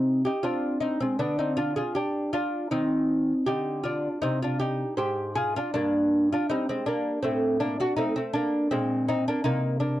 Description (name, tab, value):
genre	classical, baroque-style dance for lute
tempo	79 BPM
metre	4/4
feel	rubato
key	C minor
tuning	A4 = 442 Hz
part	lute	solo	0.0-10.0 s	G2 to C5	-24 LUFS	equal	none
room	light reverb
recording	dry, close 1970s-style studio recording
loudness	-24 LUFS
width	side -14 dB against mid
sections	0.0-10.0 A section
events	none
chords	0.0 Cm; 1.2 Dmadd11; 2.7 Cm; 5.7 Gm; 7.2 D5/A; 8.7 Bb9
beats	0.43 1.19 1.94 | 2.70 3.46 4.22 4.97 | 5.73 6.49 7.23 7.98 | 8.72 9.45